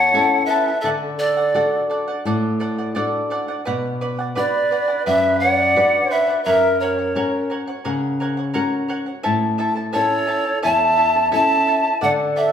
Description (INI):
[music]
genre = andean folk, Andean ensemble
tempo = 86 BPM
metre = 4/4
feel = straight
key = B minor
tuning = A4 = 440 Hz
[part]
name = polished pan flute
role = melody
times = 0.0-12.5 s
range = C#5 to A5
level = -18 LUFS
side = right 2 dB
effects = none
[part]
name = breathy mellow large quena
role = second line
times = 0.0-12.5 s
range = A4 to E5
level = -23 LUFS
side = left 1 dB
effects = none
[part]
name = charango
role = accompaniment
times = 0.0-12.5 s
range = E4 to A5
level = -24 LUFS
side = left 2 dB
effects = none
[part]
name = flamenco guitar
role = accompaniment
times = 0.0-12.5 s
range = E2 to B4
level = -24 LUFS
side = left 2 dB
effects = none
[sound]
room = wet large studio reverb, RT60 1.4 s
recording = band playing live in one room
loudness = -17 LUFS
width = side -8 dB against mid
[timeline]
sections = 0.0-12.5 A section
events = none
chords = 0.0 A; 0.8 D; 3.7 Bm; 6.5 F#; 9.2 A; 12.0 D